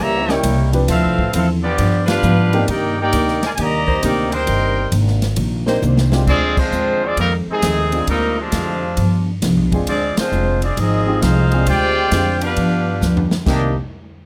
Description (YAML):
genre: jazz, big band swing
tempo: 134 BPM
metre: 4/4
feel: swing 66% on 8ths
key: C minor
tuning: A4 = 440 Hz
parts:
  - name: warm trumpet section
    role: melody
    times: 0.0-13.7 s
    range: G3 to C6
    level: -22 LUFS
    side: equal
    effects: none
  - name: mellow trombone section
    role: second line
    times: 0.0-13.7 s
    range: Ab2 to G4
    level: -26 LUFS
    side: equal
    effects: none
  - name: fingerpicked steel-string acoustic guitar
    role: accompaniment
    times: 0.0-13.7 s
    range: F2 to Ab4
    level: -24 LUFS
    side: equal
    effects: none
  - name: upright bass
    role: bass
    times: 0.0-13.7 s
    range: F1 to Ab2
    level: -22 LUFS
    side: equal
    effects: none
  - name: warm upright piano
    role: accompaniment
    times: 0.3-13.7 s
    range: F3 to Eb5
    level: -26 LUFS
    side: equal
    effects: none
  - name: bright saxophone section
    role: sustained chords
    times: 0.3-6.2 s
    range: G3 to C5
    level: -27 LUFS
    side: equal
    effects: none
  - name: swinging big-band drum kit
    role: drums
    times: 0.3-13.6 s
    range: crash cymbal, hi-hat, kick drum, ride cymbal, snare drum, toms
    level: -27 LUFS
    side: equal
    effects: none
room: moderate club reverb, RT60 0.7 s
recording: close, detailed microphones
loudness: -17 LUFS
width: mono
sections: 0.0-6.3 A section; 6.3-13.5 B section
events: band accent 2.0, 6.5, 10.1; drum fill 5.8-6.3, 13.0-13.5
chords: 0.0 C#dim7; 0.9 Dm9; 1.8 G7; 2.7 Cm9; 6.3 Dm7b5; 7.2 Fm7; 8.1 Dm7b5; 9.0 G7; 9.9 Dm7b5; 10.8 Fm7; 11.7 Dm7b5; 12.6 G7; 13.5 Cm9